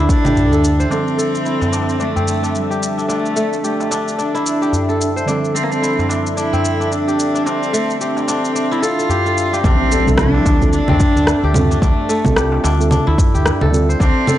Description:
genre	organic downtempo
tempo	110 BPM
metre	4/4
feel	swing 59% on 16ths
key	D minor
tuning	A4 = 440 Hz
part	warm cello	melody	0.0-14.4 s	G3 to F4	-20 LUFS	equal	analog delay
part	warm analog pad	sustained chords	0.0-14.4 s	D4 to E5	-24 LUFS	equal	chorus, sidechain pumping
part	kora	arpeggios	0.0-14.4 s	A3 to C5	-22 LUFS	left 2 dB	low-pass filter, analog delay
part	mellow fretless electric bass	bass	0.0-0.8, 9.6-14.1 s	A1 to D2	-17 LUFS	equal	analog chorus, sidechain pumping
part	electronic kick drum	drums	0.1-0.2, 9.6-14.1 s	none	-15 LUFS	equal	overdrive, studio reverb
part	electronic shaker, congas and rim click	drums	0.1-14.4 s	none	-21 LUFS	right 1 dB	studio reverb
part	darbuka	percussion	0.4-14.1 s	none	-24 LUFS	right 1 dB	none
part	muted felt-like synth keys	accompaniment	0.9-13.9 s	D3 to A4	-24 LUFS	right 2 dB	chorus, sidechain pumping, analog delay
part	impact	sound effects	9.6-11.8 s	none	-22 LUFS	equal	none
room	moderate scoring stage reverb, RT60 1.7 s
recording	dry, gritty hardware recording, transformer saturation, nothing above 10.7 kHz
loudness	-14 LUFS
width	side -12 dB against mid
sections	0.9-9.6 A section; 9.6-14.4 B section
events	impact 9.6-11.8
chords	0.0 Dsus2; 0.9 Dm9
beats	0.36 | 0.91 1.46 2.00 2.55 | 3.09 3.64 4.18 4.73 | 5.27 5.82 6.37 6.91 | 7.46 8.00 8.55 9.09 | 9.64 10.18 10.73 11.27 | 11.82 12.37 12.91 13.46 | 14.00

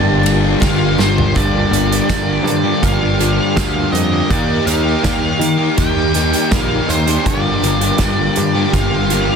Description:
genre	rock, shoegaze and dream pop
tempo	81 BPM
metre	4/4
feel	straight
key	G minor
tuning	A4 = 444 Hz
part	octave-fuzz lead guitar	melody	0.0-9.4 s	C5 to A5	-21 LUFS	right 1 dB	distortion, tape echo
part	string machine, violas	sustained chords	0.0-9.4 s	Eb4 to D6	-26 LUFS	equal	ensemble chorus
part	picked twelve-string acoustic guitar	arpeggios	0.0-9.4 s	F3 to G4	-28 LUFS	left 10 dB	analog chorus, tape echo
part	distorted electric guitar	riff	0.0-9.4 s	G2 to Eb4	-23 LUFS	equal	distortion
part	electric guitar through a small old amp	riff	0.0-9.4 s	G2 to G4	-21 LUFS	right 14 dB	reverse reverb
part	thick fuzz guitar	riff	0.0-9.4 s	G2 to Eb4	-20 LUFS	left 11 dB	distortion, analog chorus
part	picked electric bass	bass	0.0-9.3 s	G1 to Eb3	-19 LUFS	equal	none
part	loose indie drum kit	drums	0.3-9.3 s	hi-hat, kick drum, ride cymbal, snare drum, toms	-20 LUFS	equal	none
part	tambourine	percussion	0.3-9.3 s	none	-31 LUFS	right 14 dB	none
room	small room ambience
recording	dense, heavily limited modern master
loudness	-13 LUFS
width	side -6 dB against mid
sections	0.0-1.4 A section; 1.4-9.4 B section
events	drum fill 1.0-1.4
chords	0.0 Gm7; 4.3 Ebmaj7; 7.3 Gm7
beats	0.62 | 1.36 2.10 2.83 3.57 | 4.31 5.05 5.79 6.53 | 7.26 8.00 8.74

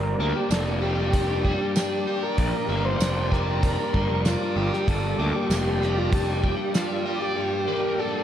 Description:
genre	psychedelic rock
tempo	96 BPM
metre	4/4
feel	straight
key	G minor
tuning	A4 = 440 Hz
part	combo organ	melody	0.0-8.2 s	F4 to C5	-28 LUFS	left 2 dB	ping-pong delay
part	bright tonewheel organ	sustained chords	0.0-8.2 s	G3 to D5	-34 LUFS	right 3 dB	slow rotary speaker, chorus vibrato
part	biting overdriven guitar	riff	0.0-8.2 s	G2 to G4	-28 LUFS	equal	flanger
part	fuzz picked electric bass	bass	0.0-6.5 s	F1 to D2	-26 LUFS	equal	overdrive
part	cloth-damped thuddy drum kit	drums	0.5-6.9 s	hi-hat, kick drum, snare drum	-28 LUFS	equal	none
part	tambourine	percussion	0.5-6.9 s	none	-37 LUFS	right 15 dB	none
room	moderate cathedral reverb, RT60 6.3 s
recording	dreamy mix soaked in reverb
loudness	-22 LUFS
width	side -10 dB against mid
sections	0.0-8.2 A section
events	none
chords	0.0 Gm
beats	0.51 1.13 1.76 | 2.38 3.00 3.63 4.25 | 4.88 5.50 6.12 6.74 | 7.37 7.99

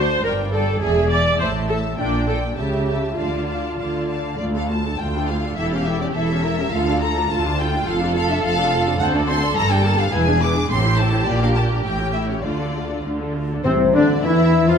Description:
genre	quick classical-period movement for symphony orchestra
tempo	97-108 BPM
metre	2/4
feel	rubato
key	D minor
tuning	A4 = 439 Hz
part	rich studio violin section	melody	0.0-14.8 s	C5 to D6	-25 LUFS	left 2 dB	none
part	warm studio violin section	second line	0.0-14.7 s	C4 to G5	-27 LUFS	left 1 dB	none
part	rich studio viola section	accompaniment	0.0-14.8 s	A3 to D5	-24 LUFS	right 1 dB	none
part	dark studio double bass section	bass	0.0-14.7 s	E1 to E2	-24 LUFS	right 1 dB	none
part	warm studio cello section	bass	0.0-14.8 s	D2 to F3	-24 LUFS	right 1 dB	none
part	large flute ensemble	second line	13.6-14.8 s	C5 to F5	-24 LUFS	left 5 dB	none
part	warm clarinet	second line	13.6-14.8 s	C4 to F4	-25 LUFS	left 2 dB	none
part	warm bassoon	accompaniment	13.6-14.8 s	C3 to F3	-23 LUFS	right 1 dB	none
part	timpani	percussion	13.6-14.5 s	A2	-27 LUFS	left 1 dB	none
part	warm oboe	second line	13.7-14.8 s	C4 to F4	-26 LUFS	right 1 dB	none
part	mellow French horn section	sustained chords	13.7-14.8 s	C4 to F4	-20 LUFS	left 6 dB	none
room	wet recital hall reverb, RT60 1.5 s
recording	none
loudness	-17 LUFS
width	side -7 dB against mid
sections	0.0-4.4 A section; 4.4-13.6 A section; 13.6-14.8 B section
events	none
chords	0.2 Gm; 0.8 E7; 1.4 Am; 2.0 Gm/Bb; 2.6 A7/C#; 3.2 Dm; 5.6 A7/E; 6.7 Dm; 7.9 Dm/F; 9.0 D7(no3); 9.6 Gm; 10.1 E7; 10.7 Am; 11.3 Gm/Bb; 11.8 A7; 12.4 Dm; 13.6 Dm9/C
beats	0.24 | 0.81 1.39 | 1.98 2.57 | 3.17 3.78 | 4.40 4.99 | 5.57 6.15 | 6.73 7.31 | 7.88 8.44 | 9.00 9.56 | 10.12 10.69 | 11.27 11.85 | 12.44 13.04 | 13.65 14.24

